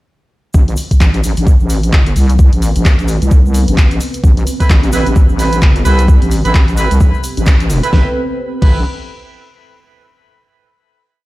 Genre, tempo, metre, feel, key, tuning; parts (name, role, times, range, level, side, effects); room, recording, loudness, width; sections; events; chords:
bass house; 130 BPM; 4/4; swing 59% on 16ths; A minor; A4 = 440 Hz
dark analog pad; sustained chords; 0.5-8.1 s; C4 to B4; -24 LUFS; right 1 dB; chorus, sidechain pumping
wobble bass; bass; 0.5-8.8 s; G1 to C2; -13 LUFS; equal; chorus, overdrive, sidechain pumping
electronic kick drum; drums; 0.5-8.7 s; -9 LUFS; equal; overdrive
tube shaker; percussion; 0.5-7.9 s; -32 LUFS; equal
big-room dance drum kit; drums; 0.7-8.7 s; crash cymbal, handclaps, hi-hat, snare drum; -22 LUFS; equal
clear horn section; stabs; 4.6-8.8 s; C4 to B4; -20 LUFS; right 3 dB; sidechain pumping, ping-pong delay
little or no reverb; played on a big sound system in a bare room, stone room reverb; -9 LUFS; side -18 dB against mid
0.5-7.9 drop; 7.9-9.8 final chord
drop 0.5-7.9; band accent 7.5
0.5 Amadd9